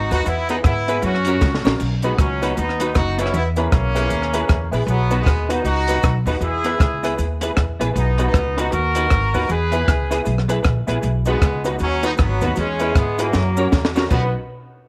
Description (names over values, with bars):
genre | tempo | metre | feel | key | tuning
ska | 156 BPM | 4/4 | swing 60% on 8ths | B major | A4 = 440 Hz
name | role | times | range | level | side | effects
clear horn section | melody | 0.0-14.3 s | F#3 to B4 | -25 LUFS | equal | none
upright bass | bass | 0.0-14.3 s | F#1 to G#2 | -24 LUFS | equal | none
semi-hollow electric guitar | accompaniment | 0.1-14.3 s | B3 to C#5 | -30 LUFS | equal | ensemble chorus, slapback echo
dark upright piano | stabs | 0.1-14.3 s | C#4 to B4 | -29 LUFS | equal | slapback echo
compact cocktail drum kit | drums | 0.1-14.2 s | crash cymbal, hi-hat, kick drum, rim click, snare drum | -22 LUFS | equal | none
cabasa | percussion | 0.1-14.3 s | none | -44 LUFS | equal | none
room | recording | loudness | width
studio ambience | none | -19 LUFS | mono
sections
0.0-1.8 A section; 1.8-14.1 A section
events
drum fill 1.4-1.8, 13.3-14.1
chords
0.3 E; 1.0 F#; 1.8 B; 3.3 E; 4.9 B; 6.4 E; 8.0 B; 9.5 E; 11.0 B; 12.6 E; 13.3 F#; 14.1 B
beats
| 0.27 0.65 1.04 1.42 | 1.80 2.19 2.57 2.96 | 3.34 3.73 4.11 4.50 | 4.88 5.27 5.65 6.04 | 6.42 6.81 7.19 7.58 | 7.96 8.35 8.73 9.11 | 9.50 9.88 10.27 10.65 | 11.04 11.42 11.81 12.19 | 12.58 12.96 13.35 13.73 | 14.12